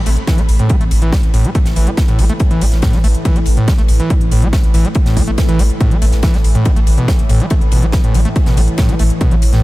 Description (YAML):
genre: driving peak-time techno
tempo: 141 BPM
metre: 4/4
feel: straight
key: unclear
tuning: A4 = 440 Hz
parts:
  - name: warm sub bass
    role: bass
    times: 0.0-9.6 s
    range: A1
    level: -16 LUFS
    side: equal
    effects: overdrive, sidechain pumping, low-pass filter
  - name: deep dark ambient pad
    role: drone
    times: 0.6-9.6 s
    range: A2 to E3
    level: -23 LUFS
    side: left 1 dB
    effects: chorus, built-in reverb, sidechain pumping
  - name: screaming distorted acid line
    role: riff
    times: 0.1-9.6 s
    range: A2 to A3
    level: -18 LUFS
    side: equal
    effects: distortion, chorus, sidechain pumping, diffuse ambient delay
  - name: electronic hi-hat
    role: drums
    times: 0.1-9.6 s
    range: none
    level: -29 LUFS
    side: equal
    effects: overdrive, sidechain pumping on hats, sidechain pumping on cymbals
  - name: tight funk drum kit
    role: drums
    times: 0.1-9.6 s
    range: ride cymbal, snare drum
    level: -30 LUFS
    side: equal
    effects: high-pass filter on cymbals, high-pass filter on snare, high-pass filter on room
  - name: electronic kick drum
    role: drums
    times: 0.3-9.3 s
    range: none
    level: -14 LUFS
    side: equal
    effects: overdrive
room: light reverb, studio ambience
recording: none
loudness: -11 LUFS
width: side -18 dB against mid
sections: 0.0-9.6 A section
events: none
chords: 0.0 A5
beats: 0.27 0.70 1.12 | 1.55 1.98 2.40 2.83 | 3.25 3.68 4.10 4.53 | 4.95 5.38 5.80 6.23 | 6.66 7.08 7.51 7.93 | 8.36 8.78 9.21